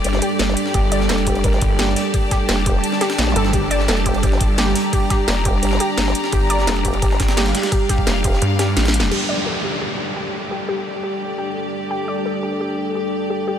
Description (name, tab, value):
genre	dark technical drum and bass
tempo	172 BPM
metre	4/4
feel	straight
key	G minor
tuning	A4 = 440 Hz
part	deep dark ambient pad	sustained chords	0.0-13.6 s	G3 to A4	-24 LUFS	right 1 dB	chorus, built-in reverb, vintage 12-bit sampler grit, sidechain pumping
part	warbly dusty pluck	arpeggios	0.0-13.6 s	G4 to D5	-25 LUFS	equal	chorus, sidechain pumping, diffuse ambient delay
part	vowel-sweep wobble bass	bass	0.0-8.4 s	F1 to Bb1	-20 LUFS	equal	chorus
part	drum and bass drum kit	drums	0.0-9.2 s	crash cymbal, hi-hat, snare drum	-25 LUFS	equal	none
part	jungle sampler-style drum kit	drums	0.0-9.1 s	hi-hat, ride cymbal, snare drum	-30 LUFS	equal	high-pass filter on cymbals, high-pass filter on snare, high-pass filter on hats, high-pass filter on room
part	bright symphonic string section	texture	0.0-13.6 s	G4 to Bb5	-26 LUFS	left 1 dB	sidechain pumping
part	snarling distorted saw bass	bass	0.7-9.1 s	G1 to G2	-20 LUFS	equal	distortion, tube saturation
part	electronic kick drum	drums	0.7-8.3 s	none	-20 LUFS	equal	none
part	zap and downlifter	sound effects	3.3-3.4, 9.1-11.9 s	none	-30 LUFS	equal	none
room	moderate huge ambient reverb, RT60 7.5 s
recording	dreamy mix soaked in reverb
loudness	-16 LUFS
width	side -9 dB against mid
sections	0.0-9.1 A section; 9.1-13.6 B section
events	drum fill 8.8-9.1; band accent 9.0; filter sweep on synth arpeggio sound 9.1-13.6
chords	0.0 Gm; 9.1 G5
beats	0.05 0.40 | 0.74 1.09 1.44 1.79 | 2.14 2.49 2.84 3.19 | 3.54 3.88 4.23 4.58 | 4.93 5.28 5.63 5.98 | 6.33 6.67 7.02 7.37 | 7.72 8.07 8.42 8.77 | 9.12 9.46 9.81 10.16 | 10.51 10.86 11.21 11.56 | 11.91 12.26 12.60 12.95 | 13.30